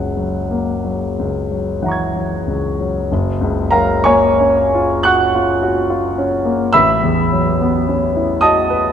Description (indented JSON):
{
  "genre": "classical, impressionist solo piano",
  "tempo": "42-56 BPM",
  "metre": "3/4",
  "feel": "rubato",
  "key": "F# mixolydian",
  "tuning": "A4 = 440 Hz",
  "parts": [
    { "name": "clear concert grand piano", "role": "solo", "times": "0.0-8.9 s", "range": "F#1 to G#6", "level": "-14 LUFS", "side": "equal", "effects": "none" }
  ],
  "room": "wet concert hall reverb, RT60 2.3 s",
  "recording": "dark, warm production",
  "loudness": "-14 LUFS",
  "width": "side -8 dB against mid",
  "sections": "0.0-3.1 A section; 3.1-8.9 A section",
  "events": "none",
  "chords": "0.0 F#add9; 3.1 F#maj7; 6.7 A69"
}